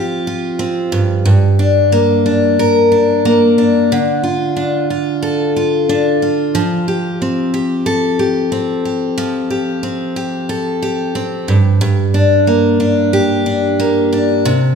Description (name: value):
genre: pop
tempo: 91 BPM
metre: 4/4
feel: straight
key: unclear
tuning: A4 = 440 Hz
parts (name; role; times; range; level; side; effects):
- picked steel-string acoustic guitar; solo; 0.0-14.8 s; G2 to Bb4; -12 LUFS; equal; none
room: wet recital hall reverb, RT60 1.7 s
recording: recorded in a church or concert hall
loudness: -12 LUFS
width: side -6 dB against mid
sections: 0.0-14.8 A section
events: none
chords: 0.0 Fsus2; 0.9 Gm; 3.9 Dm; 6.5 Fadd9; 11.5 Gm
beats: 0.61 | 1.27 1.93 2.59 3.25 | 3.90 4.57 5.22 5.88 | 6.54 7.20 7.86 8.52 | 9.18 9.84 10.50 11.16 | 11.82 12.48 13.14 13.80 | 14.46